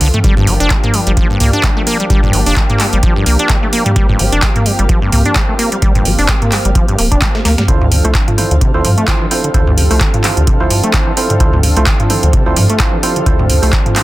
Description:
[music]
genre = acid house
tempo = 129 BPM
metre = 4/4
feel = swing 56% on 16ths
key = D minor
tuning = A4 = 440 Hz
[part]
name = warm analog pad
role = sustained chords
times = 0.0-14.0 s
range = E3 to A4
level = -20 LUFS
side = equal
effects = chorus, sidechain pumping
[part]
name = acid bass, saw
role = riff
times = 0.0-14.0 s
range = D2 to F4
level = -17 LUFS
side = equal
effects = digital delay
[part]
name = warm sub bass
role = bass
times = 0.0-13.7 s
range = D1 to G2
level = -14 LUFS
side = equal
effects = sidechain pumping
[part]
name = booming analog drum machine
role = drums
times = 0.0-14.0 s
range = handclaps, hi-hat, snare drum, toms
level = -15 LUFS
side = equal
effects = overdrive
[part]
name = granular cloud pad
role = texture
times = 0.0-14.0 s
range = G4 to F5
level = -26 LUFS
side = right 1 dB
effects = built-in reverb, sidechain pumping
[part]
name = electronic kick drum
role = drums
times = 0.2-13.8 s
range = none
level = -14 LUFS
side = equal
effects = none
[part]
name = percussive organ stab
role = stabs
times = 7.7-14.0 s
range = E4 to C5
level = -20 LUFS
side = right 4 dB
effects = chorus, digital delay
[sound]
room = little or no reverb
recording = dense, heavily limited modern master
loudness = -10 LUFS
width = side -17 dB against mid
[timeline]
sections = 0.0-14.0 A section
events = fade-in on ambient pad 0.0-14.0; drum fill 7.3-7.7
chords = 0.2 Gm7; 7.7 Dm7

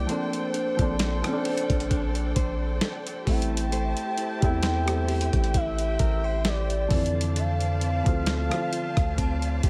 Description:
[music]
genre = contemporary R&B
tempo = 66 BPM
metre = 4/4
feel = swing 54% on 16ths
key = D minor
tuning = A4 = 436 Hz
[part]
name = gliding portamento lead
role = melody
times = 0.0-9.7 s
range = C5 to G5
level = -34 LUFS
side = equal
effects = chorus, tape echo
[part]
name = felt-muted upright piano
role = accompaniment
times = 0.0-9.7 s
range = E3 to F4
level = -34 LUFS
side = equal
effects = none
[part]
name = warm studio string section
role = sustained chords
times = 0.0-9.7 s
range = G4 to A5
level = -40 LUFS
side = equal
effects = none
[part]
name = direct-recorded clean electric guitar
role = arpeggios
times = 0.0-9.7 s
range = D3 to C5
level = -36 LUFS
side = equal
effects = none
[part]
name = long sustained 808-style bass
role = bass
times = 0.0-9.7 s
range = A1 to F2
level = -30 LUFS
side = equal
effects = none
[part]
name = dusty soul sampler-style drum kit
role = drums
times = 0.1-9.7 s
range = hi-hat, kick drum, rim click, snare drum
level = -29 LUFS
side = equal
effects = none
[part]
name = synth chime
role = texture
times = 9.2-9.7 s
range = A5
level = -42 LUFS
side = equal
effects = ensemble chorus, tremolo, tape echo
[sound]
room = digital ambience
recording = none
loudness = -26 LUFS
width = mono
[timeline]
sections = 0.0-9.7 A section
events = none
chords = 0.1 Bbmaj9; 3.3 Am7; 6.9 Dm7

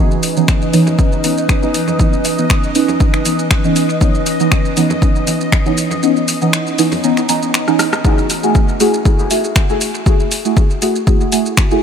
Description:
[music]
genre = dub techno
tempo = 119 BPM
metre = 4/4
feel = swing 54% on 16ths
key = F# dorian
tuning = A4 = 441 Hz
[part]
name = warbly tape-like pad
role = sustained chords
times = 0.1-8.0 s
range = E3 to B4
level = -21 LUFS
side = right 2 dB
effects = chorus, built-in reverb, sidechain pumping
[part]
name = deep mellow chord stab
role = stabs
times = 0.0-11.8 s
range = E3 to G#4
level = -16 LUFS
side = right 1 dB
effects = chorus, phaser, sidechain pumping, dub echo
[part]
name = bubbling stepped-filter texture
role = texture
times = 0.0-8.1 s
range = D#5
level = -25 LUFS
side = left 1 dB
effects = chorus, built-in reverb, sidechain pumping
[part]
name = punchy analog drum machine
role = drums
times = 0.1-11.8 s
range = finger snaps, hi-hat, rim click, shaker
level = -20 LUFS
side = left 1 dB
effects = overdrive, dub echo
[part]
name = electronic kick drum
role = drums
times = 0.5-11.7 s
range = none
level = -13 LUFS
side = equal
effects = overdrive
[part]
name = bongos and congas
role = percussion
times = 0.9-7.9 s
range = none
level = -31 LUFS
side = right 3 dB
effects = none
[sound]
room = moderate huge ambient reverb, RT60 8.3 s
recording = dreamy mix soaked in reverb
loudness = -12 LUFS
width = side -7 dB against mid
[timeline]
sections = 0.0-8.0 A section; 8.0-11.8 A section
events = kick drops out 6.0-8.0; drum fill 7.7-8.0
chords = 0.0 C#m9; 8.0 F#m9

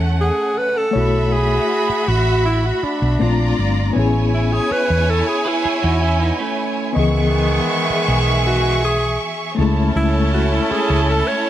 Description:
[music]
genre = soul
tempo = 80 BPM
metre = 4/4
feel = straight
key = C# minor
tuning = A4 = 441 Hz
[part]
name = warm symphonic violin section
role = second line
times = 0.0-11.5 s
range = A3 to C#6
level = -22 LUFS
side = right 1 dB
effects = slapback echo
[part]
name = reed electric piano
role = accompaniment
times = 0.0-11.5 s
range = E3 to D#5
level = -23 LUFS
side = left 5 dB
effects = fast tremolo
[part]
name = hollow-body short-scale fingered electric bass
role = bass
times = 0.0-11.2 s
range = G1 to E2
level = -18 LUFS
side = equal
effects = none
[part]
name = warm alto saxophone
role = melody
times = 0.2-11.5 s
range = D4 to C#5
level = -21 LUFS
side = equal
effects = none
[part]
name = electric guitar through a small old amp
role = riff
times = 5.4-6.9 s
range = A3 to B4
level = -26 LUFS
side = right 4 dB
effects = none
[part]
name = warm horn section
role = stabs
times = 6.9-11.5 s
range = D#3 to E4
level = -24 LUFS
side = right 3 dB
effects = none
[sound]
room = light reverb, small room ambience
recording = none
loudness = -15 LUFS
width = side -12 dB against mid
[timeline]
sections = 0.0-11.5 A section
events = alto saxophone solo 0.0-11.5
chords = 0.0 F#m9; 0.9 B7sus4; 3.2 A#maj9; 4.0 Amaj9; 7.0 C#m9; 9.6 F#m9/C# (rootless)

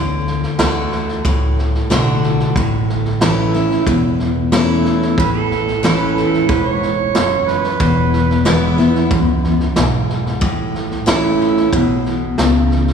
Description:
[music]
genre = honky-tonk and classic country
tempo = 92 BPM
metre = 4/4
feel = straight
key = A major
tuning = A4 = 439 Hz
[part]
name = picked steel-string acoustic guitar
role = accompaniment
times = 0.0-12.9 s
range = E2 to F#4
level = -16 LUFS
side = left 1 dB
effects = none
[part]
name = upright bass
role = bass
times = 0.0-12.9 s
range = E1 to D2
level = -21 LUFS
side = right 1 dB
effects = none
[part]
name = vintage drum kit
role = drums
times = 0.3-12.9 s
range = hi-hat, kick drum, snare drum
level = -20 LUFS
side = right 1 dB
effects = none
[part]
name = overdriven harmonica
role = second line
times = 5.2-8.7 s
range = A4 to C#5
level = -20 LUFS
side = right 7 dB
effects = none
[sound]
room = wet church reverb, RT60 3.6 s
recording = recorded in a church or concert hall, small room ambience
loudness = -13 LUFS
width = side -6 dB against mid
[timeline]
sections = 0.0-12.9 A section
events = none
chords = 0.0 D; 2.6 A; 7.8 E; 10.4 A

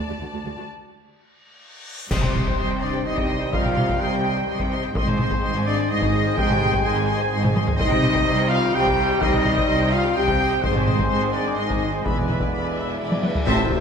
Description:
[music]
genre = cinematic, epic orchestral film score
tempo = 127 BPM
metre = 3/4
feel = straight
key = C minor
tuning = A4 = 440 Hz
[part]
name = warm symphonic violin section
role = melody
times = 0.0-13.8 s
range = G5 to C6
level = -32 LUFS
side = left 4 dB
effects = none
[part]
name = rich symphonic violin section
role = second line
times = 0.0-13.8 s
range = B4 to Ab5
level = -31 LUFS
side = right 2 dB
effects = none
[part]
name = dark symphonic viola section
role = accompaniment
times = 0.0-13.8 s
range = F#4 to E5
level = -31 LUFS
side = left 1 dB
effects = none
[part]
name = rich symphonic cello section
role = bass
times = 0.1-13.8 s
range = D2 to C3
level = -28 LUFS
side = right 2 dB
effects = none
[part]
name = warm symphonic double bass section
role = bass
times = 0.2-13.8 s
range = E1 to D2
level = -27 LUFS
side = right 3 dB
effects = none
[part]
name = reverse cymbal and impact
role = sound effects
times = 1.5-3.5, 13.6-13.8 s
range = none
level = -35 LUFS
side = left 1 dB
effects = none
[part]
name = chamber organ, flutes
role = sustained chords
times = 2.1-13.8 s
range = G3 to E5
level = -32 LUFS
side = left 3 dB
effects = none
[part]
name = dark French horn section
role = sustained chords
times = 2.1-13.8 s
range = B3 to Ab4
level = -27 LUFS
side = left 5 dB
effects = none
[part]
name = warm trombone section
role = sustained chords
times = 2.1-13.8 s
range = C3 to Ab3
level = -31 LUFS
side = right 3 dB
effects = none
[part]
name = dark trumpet section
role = stabs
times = 2.1-13.8 s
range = B4 to Ab5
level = -27 LUFS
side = equal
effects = none
[part]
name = solo taiko drums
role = drums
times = 2.1-13.8 s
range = none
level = -26 LUFS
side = equal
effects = none
[part]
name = clash cymbals, concert bass drum, cymbal swell and tam-tam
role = percussion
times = 2.1-3.0, 10.6-13.8 s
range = none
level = -30 LUFS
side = left 1 dB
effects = none
[part]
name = timpani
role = percussion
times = 2.1-2.8, 13.5-13.8 s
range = A2 to C3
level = -30 LUFS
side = left 2 dB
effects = none
[sound]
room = moderate scoring stage reverb, RT60 1.5 s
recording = none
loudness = -19 LUFS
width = side -6 dB against mid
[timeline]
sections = 0.0-2.1 A section; 2.1-13.5 B section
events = break 0.7-2.1; reverse cymbal 1.5-2.1; drum fill 1.8-2.1, 7.4-7.8, 13.1-13.5; band accent 2.1-2.6, 13.5-13.8; impact 2.1-3.5, 13.5-13.8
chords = 0.0 D; 0.7 N.C.; 2.1 Cm; 5.0 Ab; 7.8 Cm; 10.6 Ab; 12.1 E7

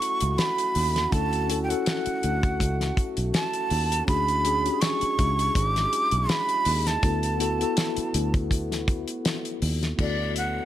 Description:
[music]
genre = lush 1970s-style soul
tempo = 81 BPM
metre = 4/4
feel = swing 54% on 16ths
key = D major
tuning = A4 = 440 Hz
[part]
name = breathy jazz flute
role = melody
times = 0.0-10.7 s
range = D5 to D6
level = -26 LUFS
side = right 3 dB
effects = none
[part]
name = mellow tine electric piano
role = accompaniment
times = 0.0-10.7 s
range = B3 to A4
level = -31 LUFS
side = left 4 dB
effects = medium stereo tremolo
[part]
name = mellow French horn section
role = sustained chords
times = 0.0-10.7 s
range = D3 to F#4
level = -36 LUFS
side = equal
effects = none
[part]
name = damped 70s drum kit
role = drums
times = 0.0-10.5 s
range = crash cymbal, hi-hat, kick drum, snare drum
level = -27 LUFS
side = left 1 dB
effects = none
[part]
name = fingered electric bass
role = bass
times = 0.2-10.6 s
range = G#1 to Eb2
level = -27 LUFS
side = equal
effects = none
[sound]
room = light reverb, studio reverb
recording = none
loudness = -22 LUFS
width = side -12 dB against mid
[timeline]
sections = 0.0-10.0 A section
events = none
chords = 0.0 Dmaj7; 4.1 E13; 7.0 D69

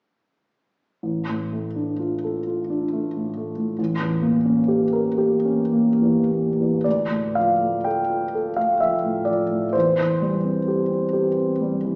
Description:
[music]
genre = classical, romantic nocturne for solo piano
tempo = 50-72 BPM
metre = 3/4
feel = rubato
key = D minor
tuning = A4 = 439 Hz
[part]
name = warm concert grand piano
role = solo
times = 1.0-12.0 s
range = A1 to G5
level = -22 LUFS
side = equal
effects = none
[sound]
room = wet recital hall reverb, RT60 1.3 s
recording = recorded in a church or concert hall, small speaker sound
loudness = -22 LUFS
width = mono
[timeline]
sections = 1.0-6.9 A section; 6.9-12.0 B section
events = none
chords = 1.0 Dm/A; 3.8 A7b9; 6.9 Dm; 9.7 C/E

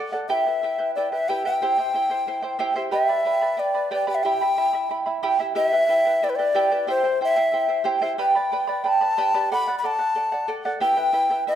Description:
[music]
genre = andean folk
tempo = 91 BPM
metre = 2/4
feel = straight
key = E minor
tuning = A4 = 439 Hz
[part]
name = charango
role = accompaniment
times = 0.0-11.6 s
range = E4 to B5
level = -24 LUFS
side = right 4 dB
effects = none
[part]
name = breathy large quena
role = melody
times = 0.3-11.6 s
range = B4 to B5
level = -22 LUFS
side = left 2 dB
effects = none
[sound]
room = moderate recital hall reverb, RT60 1.5 s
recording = none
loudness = -20 LUFS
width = side -10 dB against mid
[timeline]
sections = 0.0-5.6 A section; 5.6-11.6 A section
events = none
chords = 0.3 Em; 1.6 C; 2.9 G; 4.2 Em; 6.9 C; 8.2 G; 9.5 D; 10.8 Em

